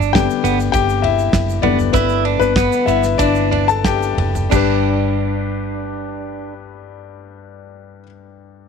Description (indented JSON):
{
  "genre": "piano-driven pop",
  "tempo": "88-103 BPM",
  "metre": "4/4",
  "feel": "straight",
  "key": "G major",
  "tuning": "A4 = 440 Hz",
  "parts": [
    { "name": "direct-recorded clean electric guitar", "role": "riff", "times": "0.0-6.5 s", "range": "B3 to E4", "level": "-21 LUFS", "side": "right 18 dB", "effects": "lush chorus" },
    { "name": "vintage muted fingered electric bass", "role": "bass", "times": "0.0-8.0 s", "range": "F#1 to G1", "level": "-21 LUFS", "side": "right 2 dB", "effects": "none" },
    { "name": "egg shaker", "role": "percussion", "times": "0.0-4.8 s", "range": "none", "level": "-37 LUFS", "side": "right 16 dB", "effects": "none" },
    { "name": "warm concert grand piano", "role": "accompaniment", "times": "0.1-8.7 s", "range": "G2 to A5", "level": "-18 LUFS", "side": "left 11 dB", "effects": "none" },
    { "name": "damped 70s drum kit", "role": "drums", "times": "0.1-4.7 s", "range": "crash cymbal, kick drum, ride cymbal, snare drum, toms", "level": "-22 LUFS", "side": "right 2 dB", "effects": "none" }
  ],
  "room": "light reverb, studio reverb",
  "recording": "1960s-style stereo with parts hard left and right",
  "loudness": "-14 LUFS",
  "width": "side -6 dB against mid",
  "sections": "0.0-4.5 A section; 4.5-7.3 B section",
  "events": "slowing down 0.0-4.5; grand piano solo 0.0-4.5",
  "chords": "0.0 G"
}